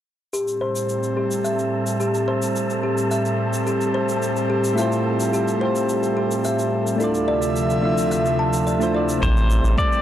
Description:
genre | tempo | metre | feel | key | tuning
sunset chillout | 108 BPM | 4/4 | straight | A minor | A4 = 445 Hz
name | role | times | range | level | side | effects
airy breathy pad | sustained chords | 0.3-10.0 s | D2 to E5 | -24 LUFS | right 1 dB | chorus
kalimba | arpeggios | 0.3-9.2 s | G4 to A5 | -24 LUFS | left 2 dB | low-pass filter, analog delay
cabasa | drums | 0.3-10.0 s | none | -34 LUFS | left 1 dB | small room reverb
wind-like tuned noise texture | texture | 1.0-10.0 s | A4 to A5 | -30 LUFS | right 2 dB | built-in reverb
soft electric-piano-like synth keys | accompaniment | 4.7-10.0 s | A3 to E5 | -24 LUFS | equal | chorus, auto-pan, analog delay
pedal steel guitar | melody | 9.2-10.0 s | C5 to D5 | -23 LUFS | left 2 dB | none
round analog bass | bass | 9.2-9.8 s | A1 | -17 LUFS | equal | none
electronic kick drum | drums | 9.2-9.9 s | none | -22 LUFS | equal | small room reverb
room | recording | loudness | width
light reverb | dry, gritty hardware recording | -19 LUFS | side -11 dB against mid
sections
0.3-9.2 A section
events
none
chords
0.3 Am7; 4.8 Fmaj9/A; 7.0 Dm9; 9.2 Am7

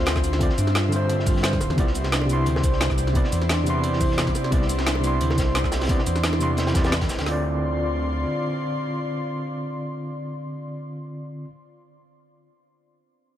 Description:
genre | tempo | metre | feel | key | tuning
liquid drum and bass | 175 BPM | 4/4 | swing 54% on 16ths | D dorian | A4 = 441 Hz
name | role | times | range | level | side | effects
overdriven tine electric piano | accompaniment | 0.0-11.5 s | C3 to C6 | -27 LUFS | equal | medium tremolo, digital delay
airy breathy pad | sustained chords | 0.0-10.8 s | E4 to C6 | -31 LUFS | equal | chorus
Celtic harp | arpeggios | 0.0-10.3 s | B3 to F5 | -31 LUFS | right 1 dB | tape echo
dark detuned saw bass | bass | 0.0-8.3 s | D1 to G2 | -25 LUFS | equal | none
crunchy breakbeat drum kit | drums | 0.1-7.3 s | hi-hat, snare drum | -34 LUFS | equal | high-pass filter on hats, high-pass filter on snare, high-pass filter on room
drum and bass drum kit | drums | 0.1-7.2 s | hi-hat, shaker, snare drum | -28 LUFS | equal | overdrive
drum and bass drum kit | drums | 0.2-7.3 s | hi-hat, kick drum, snare drum | -24 LUFS | equal | overdrive
bongos | percussion | 1.6-7.2 s | none | -35 LUFS | equal | none
room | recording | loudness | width
light reverb, studio reverb | none | -20 LUFS | side -11 dB against mid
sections
0.0-7.3 A section; 7.3-10.0 B section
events
drop 0.0-7.3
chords
0.0 Dm7; 1.8 Cmaj9; 7.3 Dm7

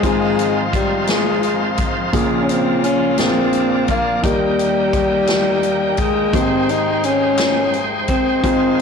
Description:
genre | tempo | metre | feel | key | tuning
slow gospel | 57 BPM (dotted quarters) | 6/8 | straight | Ab major | A4 = 440 Hz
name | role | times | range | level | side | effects
mellow alto saxophone | melody | 0.0-8.8 s | G3 to Eb4 | -18 LUFS | left 2 dB | none
warm grand piano | accompaniment | 0.0-8.8 s | Ab1 to Ab5 | -21 LUFS | equal | none
dark studio string section | sustained chords | 0.0-8.8 s | Db3 to G5 | -29 LUFS | left 1 dB | none
overdriven tonewheel organ | sustained chords | 0.0-8.8 s | Ab2 to G5 | -23 LUFS | equal | slow rotary speaker
swinging big-band drum kit | drums | 0.0-8.8 s | hi-hat, kick drum, snare drum | -23 LUFS | left 1 dB | none
group handclap | percussion | 7.4-7.7 s | none | -30 LUFS | left 3 dB | none
room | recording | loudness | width
light reverb | blown-out, overdriven recording, overdrive | -15 LUFS | side -6 dB against mid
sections
0.0-8.8 A section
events
none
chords
0.0 Ab6; 2.1 Bbm7; 3.2 Bb7; 4.2 Eb; 6.3 Abmaj7

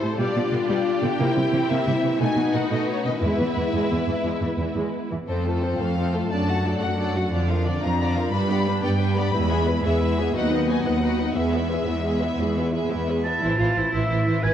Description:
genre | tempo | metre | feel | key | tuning
cinematic, heroic adventure film score | 118 BPM (dotted quarters) | 12/8 | straight | unclear | A4 = 440 Hz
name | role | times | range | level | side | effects
rich symphonic violin section | melody | 0.0-14.5 s | B4 to B5 | -31 LUFS | left 5 dB | none
rich symphonic violin section | second line | 0.0-14.5 s | E4 to F#5 | -30 LUFS | left 2 dB | none
rich symphonic viola section | accompaniment | 0.0-14.5 s | C3 to G#4 | -28 LUFS | right 2 dB | none
mellow French horn section | sustained chords | 0.0-13.2 s | F3 to F4 | -28 LUFS | left 3 dB | none
rich chamber cello section | bass | 0.0-14.5 s | D#2 to B4 | -24 LUFS | right 2 dB | none
warm oboe | second line | 13.2-14.5 s | E5 to A5 | -25 LUFS | right 2 dB | none
rich studio double bass section | bass | 13.4-14.5 s | G#1 to A1 | -24 LUFS | right 2 dB | none
room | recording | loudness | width
moderate scoring stage reverb, RT60 1.9 s | worn, warbling old tape, cassette tape, warbly pitch drift | -20 LUFS | side -10 dB against mid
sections
0.0-13.4 A section; 13.4-14.5 A section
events
none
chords
0.2 G7/B; 1.2 C7; 2.2 B7; 3.2 E; 5.3 F; 6.3 D/F#; 7.3 Bb/F; 8.3 G; 9.3 E; 10.3 B/D#; 11.4 E; 13.4 Am

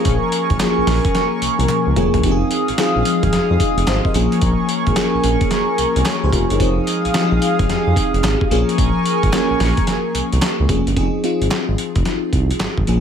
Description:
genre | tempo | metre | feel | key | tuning
R&B, new jack swing | 110 BPM | 4/4 | swing 65% on 16ths | F minor | A4 = 440 Hz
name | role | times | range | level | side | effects
FM electric piano with soft pad layer | accompaniment | 0.0-13.0 s | F3 to Eb5 | -19 LUFS | left 2 dB | chorus, phaser
chorused pulse-width pad | sustained chords | 0.0-10.9 s | Ab4 to Eb6 | -21 LUFS | right 1 dB | none
smooth synth bass | bass | 0.1-13.0 s | F1 to F2 | -19 LUFS | equal | none
dusty soul sampler-style drum kit | drums | 0.1-13.0 s | handclaps, hi-hat, kick drum, snare drum, tambourine, toms | -21 LUFS | equal | overdrive
group handclap | percussion | 0.6-12.8 s | none | -32 LUFS | right 8 dB | none
room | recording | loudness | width
light reverb | none | -15 LUFS | side -8 dB against mid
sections
0.0-11.0 A section; 11.0-13.0 B section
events
drum fill 1.7-2.2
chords
0.0 Bbm7; 2.2 Fm7; 4.1 Bbm7; 6.6 Fm7; 8.5 Bbm7; 11.0 Fm7

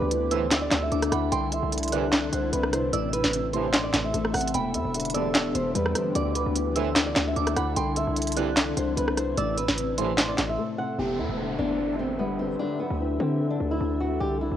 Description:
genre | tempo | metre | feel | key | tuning
hip hop, trap | 149 BPM | 4/4 | half-time | unclear | A4 = 439 Hz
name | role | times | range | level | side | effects
flamenco guitar | melody | 0.0-14.6 s | B3 to G5 | -30 LUFS | right 2 dB | cassette tape
soft synth bell | second line | 0.0-10.9 s | B5 to F#6 | -35 LUFS | right 8 dB | chorus, analog delay
dark baby grand piano | accompaniment | 0.0-14.6 s | E2 to D4 | -30 LUFS | left 8 dB | none
granular cloud pad | sustained chords | 0.0-14.6 s | C3 to E5 | -34 LUFS | right 1 dB | built-in reverb
hard-hitting 808-style bass | bass | 0.0-14.6 s | E1 to D3 | -31 LUFS | right 1 dB | none
trap drum kit | drums | 0.1-10.5 s | handclaps, hi-hat, rim click, snare drum | -25 LUFS | equal | cassette tape
mellow brass ensemble | stabs | 0.3-10.1 s | C2 to G3 | -31 LUFS | right 8 dB | none
downlifter | sound effects | 11.0-14.2 s | none | -39 LUFS | right 1 dB | none
room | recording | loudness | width
light reverb, small room reverb | home recording on cassette | -23 LUFS | side -10 dB against mid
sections
0.0-11.0 A section; 11.0-14.6 B section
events
break 10.6-11.0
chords
0.0 Dsus2; 1.3 Cadd9; 2.9 Am; 4.5 Em7; 6.2 Dsus2; 7.8 Cadd9; 9.4 Am; 11.0 Em7; 12.6 Dsus2

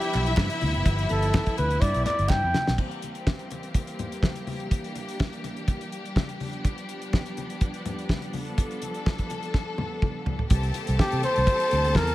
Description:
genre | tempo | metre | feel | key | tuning
disco | 124 BPM | 4/4 | straight | unclear | A4 = 438 Hz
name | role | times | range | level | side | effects
warm flugelhorn | melody | 0.0-2.8, 11.0-12.1 s | G4 to G5 | -26 LUFS | equal | none
rich studio string section | second line | 0.0-2.5, 10.5-12.1 s | E4 to A5 | -30 LUFS | left 2 dB | none
warm studio string section | sustained chords | 0.0-12.1 s | E3 to A4 | -34 LUFS | equal | none
damped 70s drum kit | drums | 0.0-12.1 s | crash cymbal, hi-hat, kick drum, snare drum, toms | -25 LUFS | equal | none
fingered electric bass | bass | 0.1-2.8, 10.5-12.1 s | Gb1 to C3 | -25 LUFS | equal | none
group handclap | percussion | 0.1-2.4 s | none | -40 LUFS | right 6 dB | none
congas | percussion | 0.4-12.1 s | none | -36 LUFS | left 4 dB | none
room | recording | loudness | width
studio reverb | none | -24 LUFS | side -16 dB against mid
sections
0.0-2.8 A section; 2.8-10.5 B section; 10.5-12.1 C section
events
flugelhorn solo 0.0-2.8; drum fill 2.3-2.8, 9.5-10.5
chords
0.0 G7; 2.8 C7; 6.4 G7; 10.5 C7

